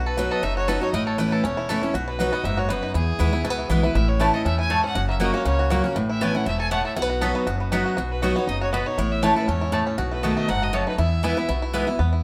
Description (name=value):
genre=bluegrass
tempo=239 BPM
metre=4/4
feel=swing 54% on 8ths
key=E major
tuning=A4 = 440 Hz
part: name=bluegrass banjo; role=melody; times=0.0-12.2 s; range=E3 to A4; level=-31 LUFS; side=equal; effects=none
part: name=picked steel-string acoustic guitar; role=accompaniment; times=0.0-12.0 s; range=E2 to F#4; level=-27 LUFS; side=equal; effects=none
part: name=upright bass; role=bass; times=0.0-12.2 s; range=E1 to E2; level=-28 LUFS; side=equal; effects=none
part: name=clear fiddle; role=melody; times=0.1-11.7 s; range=G#4 to G#5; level=-31 LUFS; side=equal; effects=none
part: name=mandolin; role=stabs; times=4.2-11.8 s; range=A3 to B5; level=-29 LUFS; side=equal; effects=none
room=moderate stone room reverb, RT60 1.1 s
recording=band playing live in one room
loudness=-23 LUFS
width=mono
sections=0.0-12.0 A section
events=none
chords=0.0 B; 0.9 A; 1.9 B; 2.9 E; 4.0 A; 5.0 F#; 6.0 Aadd9; 7.0 B; 9.0 A; 10.0 B7; 11.0 E